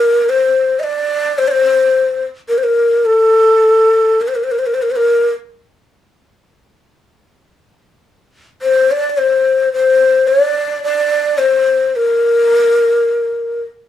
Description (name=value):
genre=arabic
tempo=free time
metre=none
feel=none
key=unclear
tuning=A4 = 440 Hz
part: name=breathy mellow ney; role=solo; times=0.0-13.6 s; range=A4 to E5-46c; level=-11 LUFS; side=left 2 dB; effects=none
room=light reverb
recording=small room ambience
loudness=-11 LUFS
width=side -11 dB against mid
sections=0.0-13.9 A section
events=none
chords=none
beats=free time